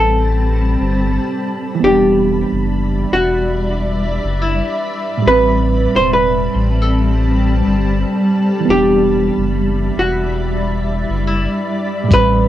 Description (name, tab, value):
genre	lo-fi hip hop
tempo	70 BPM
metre	4/4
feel	swing 61% on 16ths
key	E minor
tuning	A4 = 441 Hz
part	archtop guitar, miked and amplified	melody	0.0-12.5 s	E4 to C5	-16 LUFS	left 1 dB	low-pass filter
part	bright reed electric piano	accompaniment	0.0-12.5 s	A2 to B4	-20 LUFS	right 5 dB	overdrive, low-pass filter, cassette tape
part	granular cloud pad	sustained chords	0.0-12.5 s	G3 to B5	-20 LUFS	left 1 dB	built-in reverb, low-pass filter, cassette tape
part	sub bass with octave	bass	0.0-12.5 s	E1 to A1	-18 LUFS	left 1 dB	none
part	dusty soul sampler-style drum kit	drums	12.1-12.4 s	hi-hat, kick drum	-14 LUFS	left 1 dB	cassette tape
room	wet booth ambience, RT60 0.2 s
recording	home recording on cassette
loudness	-13 LUFS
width	side -12 dB against mid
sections	0.0-12.5 A section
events	none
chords	0.0 Am9; 1.8 Em7; 5.2 Am9; 8.7 Em7